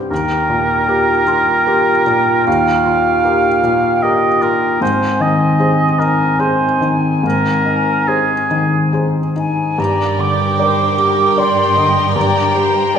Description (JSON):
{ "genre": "cinematic", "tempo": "69-79 BPM", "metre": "3/4", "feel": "rubato", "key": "G phrygian", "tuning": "A4 = 440 Hz", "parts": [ { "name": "dark clarinet", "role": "second line", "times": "0.0-9.4 s", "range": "C4 to G4", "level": "-22 LUFS", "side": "left 1 dB", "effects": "none" }, { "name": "felt-muted upright piano", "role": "accompaniment", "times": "0.0-13.0 s", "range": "Eb2 to D5", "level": "-17 LUFS", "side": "left 2 dB", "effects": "none" }, { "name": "silver concert flute", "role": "second line", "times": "0.1-13.0 s", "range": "G5 to D6", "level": "-18 LUFS", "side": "equal", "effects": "none" }, { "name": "warm oboe", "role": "second line", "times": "0.1-8.9 s", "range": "Ab4 to F5", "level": "-16 LUFS", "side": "right 2 dB", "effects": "none" }, { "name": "warm studio violin section", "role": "melody", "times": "9.8-13.0 s", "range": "G5", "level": "-25 LUFS", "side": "left 3 dB", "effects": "none" }, { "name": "clear studio violin section", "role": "second line", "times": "9.8-13.0 s", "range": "G4 to Bb4", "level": "-24 LUFS", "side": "left 2 dB", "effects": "none" }, { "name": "dark studio viola section", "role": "accompaniment", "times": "9.8-13.0 s", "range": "Bb4 to Eb5", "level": "-22 LUFS", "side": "right 3 dB", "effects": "none" }, { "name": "warm studio cello section", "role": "bass", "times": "9.8-13.0 s", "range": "G2", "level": "-21 LUFS", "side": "right 4 dB", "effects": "none" } ], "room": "wet scoring stage reverb, RT60 1.9 s", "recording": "recorded in a church or concert hall, nothing above 11.0 kHz", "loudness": "-12 LUFS", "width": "side -8 dB against mid", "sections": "0.0-9.8 A section; 9.8-13.0 A section", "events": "none", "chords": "0.1 Ebadd9; 4.8 Ab; 9.8 Gm" }